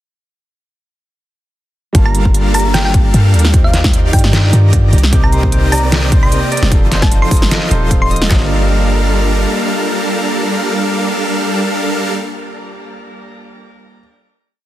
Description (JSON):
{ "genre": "future bass", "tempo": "151 BPM", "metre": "4/4", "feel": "swing 54% on 16ths, half-time", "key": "G minor", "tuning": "A4 = 440 Hz", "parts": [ { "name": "dark grand piano", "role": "accompaniment", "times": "1.9-14.0 s", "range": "C3 to D6", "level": "-24 LUFS", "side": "right 2 dB", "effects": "sidechain pumping" }, { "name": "supersaw chords", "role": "riff", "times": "1.9-12.1 s", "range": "Eb3 to C6", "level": "-18 LUFS", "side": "equal", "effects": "sidechain pumping" }, { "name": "warm 808-style bass", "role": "bass", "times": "1.9-9.5 s", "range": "Eb1 to G2", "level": "-13 LUFS", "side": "equal", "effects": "sidechain pumping" }, { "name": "dubstep drum kit", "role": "drums", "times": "1.9-8.4 s", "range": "handclaps, kick drum, snare drum", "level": "-12 LUFS", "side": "equal", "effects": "none" }, { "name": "dubstep drum kit", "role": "drums", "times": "1.9-8.3 s", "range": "hi-hat, snare drum", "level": "-18 LUFS", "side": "equal", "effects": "none" }, { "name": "airy breathy pad", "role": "sustained chords", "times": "2.3-12.1 s", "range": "C3 to A4", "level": "-26 LUFS", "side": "right 1 dB", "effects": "chorus, phaser, sidechain pumping" }, { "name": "thumb-piano-like synth pluck", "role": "melody", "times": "2.1-8.3 s", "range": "F5 to C6", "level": "-22 LUFS", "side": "left 1 dB", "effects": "chorus, cassette tape, sidechain pumping, dub echo" }, { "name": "Celtic harp", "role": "arpeggios", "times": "5.1-10.8 s", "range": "F4 to Eb5", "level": "-25 LUFS", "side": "right 1 dB", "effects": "sidechain pumping, dub echo" } ], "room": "little or no reverb", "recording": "dense, heavily limited modern master", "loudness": "-10 LUFS", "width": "side -14 dB against mid", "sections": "1.9-8.3 drop; 8.3-11.5 final chord", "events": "drop 1.9-8.3", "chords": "1.9 Gm7; 3.5 Ebmaj7; 4.9 Cm9; 6.7 F7; 8.3 Gm7", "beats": "| 1.95 2.35 2.74 3.14 | 3.54 3.94 4.33 4.73 | 5.13 5.53 5.92 6.32 | 6.72 7.11 7.51 7.91 | 8.31 8.70 9.10 9.50 | 9.90 10.29 10.69 11.09" }